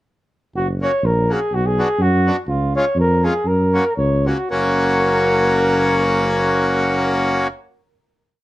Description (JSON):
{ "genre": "alpine folk, alpine dance band", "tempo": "108-125 BPM", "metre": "2/4", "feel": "swing 53% on 8ths", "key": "F# major", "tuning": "A4 = 440 Hz", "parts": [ { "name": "mellow tuba", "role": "bass", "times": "0.5-7.5 s", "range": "F#1 to F#2", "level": "-20 LUFS", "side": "equal", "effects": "none" }, { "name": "mellow flugelhorn", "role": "melody", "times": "0.6-7.5 s", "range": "E#4 to C#5", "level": "-19 LUFS", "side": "equal", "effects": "plate reverb" }, { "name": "accordion", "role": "accompaniment", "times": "0.8-7.5 s", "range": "G#3 to F#4", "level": "-18 LUFS", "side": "left 1 dB", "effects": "none" } ], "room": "light reverb", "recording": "none", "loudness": "-15 LUFS", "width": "side -16 dB against mid", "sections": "0.5-4.5 A section; 4.5-6.7 final chord", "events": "slowing down 2.5-4.5", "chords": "0.5 F#; 1.5 Bm; 2.5 C#; 3.5 F#" }